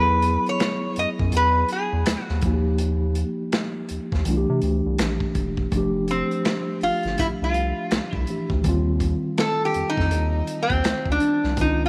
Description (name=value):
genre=R&B, neo-soul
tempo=82 BPM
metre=4/4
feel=swing 62% on 16ths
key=F major from 5.7 s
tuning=A4 = 439 Hz
part: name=metal-body resonator slide guitar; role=melody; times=0.0-11.9 s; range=C4 to D#5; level=-26 LUFS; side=equal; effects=none
part: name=mellow tine electric piano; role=accompaniment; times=0.0-11.9 s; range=Eb3 to G#4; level=-29 LUFS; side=equal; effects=none
part: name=round analog bass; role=bass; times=0.0-11.9 s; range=E1 to C3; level=-27 LUFS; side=equal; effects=none
part: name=crunchy breakbeat drum kit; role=drums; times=0.2-11.8 s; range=finger snaps, hi-hat, kick drum, snare drum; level=-29 LUFS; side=equal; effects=none
room=light reverb, small room ambience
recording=none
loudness=-23 LUFS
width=mono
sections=0.0-5.7 A section; 5.7-11.9 B section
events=resonator guitar played with a steel bar solo 5.7-11.9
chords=0.0 Eadd9; 2.4 Ebadd9; 4.3 C9; 5.7 Fmaj9; 8.6 Ebadd9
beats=0.60 1.33 2.06 | 2.79 3.52 4.25 4.99 | 5.72 6.45 7.18 7.91 | 8.64 9.38 10.11 10.84 | 11.57